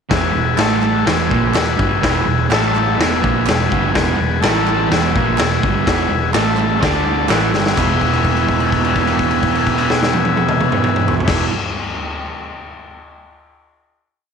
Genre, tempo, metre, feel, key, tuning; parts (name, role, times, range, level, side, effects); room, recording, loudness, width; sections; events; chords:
garage rock duo or trio; 126 BPM; 4/4; straight; E major; A4 = 439 Hz
combo organ; sustained chords; 0.1-11.5 s; A4 to A5; -20 LUFS; left 12 dB; spring reverb
fuzz guitar; riff; 0.1-11.5 s; E2 to D4; -19 LUFS; right 9 dB; distortion
hollow-body short-scale fingered electric bass; bass; 0.1-11.5 s; E1 to D2; -23 LUFS; left 1 dB
raw garage drum kit; drums; 0.1-11.4 s; crash cymbal, kick drum, snare drum, toms; -18 LUFS; left 1 dB
group handclap; percussion; 0.6-8.0 s; -28 LUFS; right 11 dB
moderate echo chamber reverb, RT60 1.3 s, small room ambience; 1960s-style stereo with parts hard left and right; -14 LUFS; side -6 dB against mid
0.1-7.8 riff; 7.8-11.6 final chord
transistor combo organ fill 3.2-4.0, 6.8-7.8; drum fill 7.5; held note 7.8-11.3
0.1 E; 0.6 A5; 1.1 E; 2.5 A5; 3.0 E; 4.4 A5; 4.9 E; 6.3 A5; 6.8 D5; 7.3 E